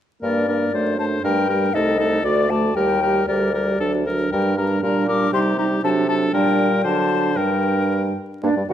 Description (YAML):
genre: quick classical-period movement for wind quintet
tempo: 118 BPM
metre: 2/4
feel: rubato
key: G minor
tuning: A4 = 440 Hz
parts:
  - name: concert flute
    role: melody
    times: 0.2-8.7 s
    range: D5 to D6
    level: -24 LUFS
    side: left 8 dB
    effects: none
  - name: clear oboe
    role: second line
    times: 0.2-8.2 s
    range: G4 to D5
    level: -24 LUFS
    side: left 2 dB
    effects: none
  - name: clear clarinet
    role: accompaniment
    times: 0.2-8.7 s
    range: D4 to G4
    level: -24 LUFS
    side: right 6 dB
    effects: none
  - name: mellow French horn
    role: accompaniment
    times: 0.2-8.7 s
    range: D3 to Bb3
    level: -24 LUFS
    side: equal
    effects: none
  - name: clear bassoon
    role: bass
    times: 0.2-8.7 s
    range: C2 to D3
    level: -24 LUFS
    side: right 2 dB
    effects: none
room: moderate recital hall reverb, RT60 1.6 s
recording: vinyl crackle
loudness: -17 LUFS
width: side -10 dB against mid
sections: 0.2-8.4 A section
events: none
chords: 0.2 Gm; 0.7 D7/F#; 1.2 Gm; 1.7 Adim/C; 2.2 D; 2.8 Eb; 3.3 Gm/D; 3.8 D; 4.3 Gm; 4.8 Gm/Bb; 5.3 Cm; 5.8 D7/C; 6.3 Gm/Bb; 6.8 D7; 7.4 Gm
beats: | 0.22 0.73 | 1.24 1.74 | 2.24 2.75 | 3.27 3.80 | 4.32 4.83 | 5.33 5.83 | 6.34 6.84 | 7.37 7.90 | 8.43